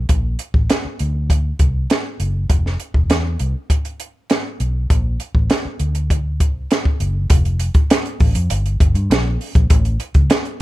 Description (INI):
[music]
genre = lush 1970s-style soul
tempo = 100 BPM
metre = 4/4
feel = straight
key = F major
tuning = A4 = 441 Hz
[part]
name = vintage muted fingered electric bass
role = bass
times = 0.0-10.3 s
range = E1 to G2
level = -19 LUFS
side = equal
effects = none
[part]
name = compact cocktail drum kit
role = drums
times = 0.1-10.6 s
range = hi-hat, kick drum, snare drum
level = -16 LUFS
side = equal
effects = none
[sound]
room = little or no reverb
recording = none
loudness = -15 LUFS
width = side -17 dB against mid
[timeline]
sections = 0.0-7.3 A section; 7.3-10.6 B section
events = none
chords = none